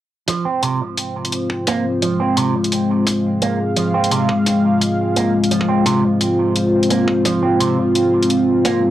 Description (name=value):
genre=half-time drum and bass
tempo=172 BPM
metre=4/4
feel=swing 56% on 16ths, half-time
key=F minor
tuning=A4 = 439 Hz
part: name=dark analog pad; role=sustained chords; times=0.8-8.9 s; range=Ab3 to F5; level=-16 LUFS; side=left 1 dB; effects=chorus, sidechain pumping, cassette tape
part: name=electric guitar with an envelope filter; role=arpeggios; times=0.3-8.8 s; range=C3 to C4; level=-22 LUFS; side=right 5 dB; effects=vintage 12-bit sampler grit, low-pass filter, cassette tape, tape echo
part: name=electronic hi-hat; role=drums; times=0.3-8.7 s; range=none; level=-21 LUFS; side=left 1 dB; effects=small room ambience, cassette tape
part: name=electronic kick drum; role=drums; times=0.3-8.7 s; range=none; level=-25 LUFS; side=equal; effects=high-pass filter on kick, small room ambience, cassette tape
room=wet booth ambience, RT60 0.2 s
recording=home recording on cassette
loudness=-15 LUFS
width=side -13 dB against mid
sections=0.3-8.9 A section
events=none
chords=0.3 Fm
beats=| 0.28 0.63 0.98 1.32 | 1.67 2.02 2.37 2.72 | 3.07 3.42 3.77 4.12 | 4.46 4.81 5.16 5.51 | 5.86 6.21 6.56 6.91 | 7.25 7.60 7.95 8.30 | 8.65